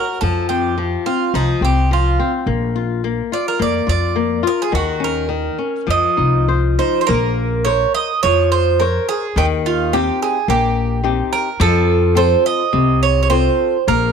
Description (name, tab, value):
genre	fado-style ballad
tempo	106 BPM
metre	4/4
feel	rubato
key	Bb dorian from 7.1 s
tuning	A4 = 440 Hz
part	Greek bouzouki	melody	0.0-14.1 s	Eb4 to Eb5	-18 LUFS	right 9 dB	none
part	flamenco guitar	accompaniment	0.0-14.1 s	C3 to Db5	-20 LUFS	left 10 dB	none
part	upright bass	bass	0.2-14.1 s	Bb1 to F2	-18 LUFS	equal	none
room	light reverb, small room ambience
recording	1960s-style stereo with parts hard left and right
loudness	-14 LUFS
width	side -6 dB against mid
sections	0.0-7.1 A section; 7.1-14.1 B section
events	none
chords	0.2 F5; 2.5 Bb; 4.7 Eb5; 5.9 F5; 7.1 Bbmadd9; 9.4 Eb6; 11.6 F